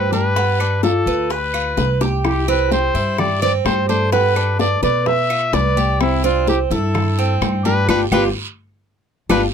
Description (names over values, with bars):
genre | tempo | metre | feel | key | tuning
latin, Cuban son and guajira | 128 BPM | 4/4 | straight | C major | A4 = 440 Hz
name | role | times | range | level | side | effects
clear trumpet | melody | 0.0-9.4 s | E4 to E5 | -20 LUFS | left 3 dB | none
nylon-string guitar | second line | 0.0-9.4 s | C4 to B4 | -23 LUFS | left 2 dB | none
Cuban tres | arpeggios | 0.0-9.4 s | B3 to B4 | -22 LUFS | right 8 dB | none
upright bass | bass | 0.0-9.5 s | G1 to B2 | -21 LUFS | equal | none
bongos | percussion | 0.1-9.4 s | none | -26 LUFS | left 4 dB | none
congas | percussion | 0.1-9.4 s | none | -27 LUFS | left 4 dB | none
guiro | percussion | 0.1-9.4 s | none | -33 LUFS | right 6 dB | none
claves | percussion | 0.6-9.4 s | none | -32 LUFS | equal | none
room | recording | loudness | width
light reverb | none | -15 LUFS | side -7 dB against mid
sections
0.0-9.5 A section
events
drum fill 1.8-2.2; band accent 7.9-9.5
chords
0.4 G7; 2.2 Cadd9; 4.1 G7; 6.0 Cadd9; 7.9 G7